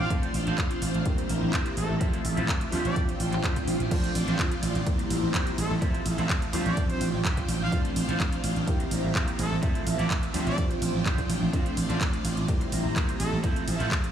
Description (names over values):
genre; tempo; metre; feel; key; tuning
filtered disco house; 126 BPM; 4/4; straight; D minor; A4 = 438 Hz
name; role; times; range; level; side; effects
brilliant horn section; melody; 0.0-13.4 s; A3 to F5; -38 LUFS; right 1 dB; none
funky polysynth comp; accompaniment; 0.0-14.1 s; F3 to E5; -33 LUFS; equal; chorus, phaser, cassette tape, sidechain pumping
phased string machine; sustained chords; 0.0-14.1 s; F3 to C6; -34 LUFS; equal; ensemble chorus, phaser, sidechain pumping
electric guitar at the edge of break-up; riff; 0.0-14.1 s; D4 to D5; -37 LUFS; right 2 dB; lush chorus, sidechain pumping
slap bass; bass; 0.0-14.0 s; A1 to D2; -29 LUFS; right 1 dB; sidechain pumping
electronic kick drum; drums; 0.1-14.0 s; none; -29 LUFS; equal; none
house drum kit; drums; 0.1-14.1 s; crash cymbal, handclaps, hi-hat, ride cymbal; -34 LUFS; right 1 dB; sidechain pumping on hats, sidechain pumping on cymbals
room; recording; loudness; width
moderate huge ambient reverb, RT60 7.5 s; dreamy mix soaked in reverb, studio reverb; -24 LUFS; side -9 dB against mid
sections
0.0-14.1 A section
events
none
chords
0.1 Dm7; 1.1 C7; 2.0 Fmaj7; 2.7 G7sus4; 3.9 Dm7; 4.9 C7; 5.8 Fmaj7; 6.5 G7sus4; 7.7 Dm7; 8.7 C7; 9.6 Fmaj7; 10.3 G7sus4; 11.5 Dm7; 12.5 C7; 13.4 Fmaj7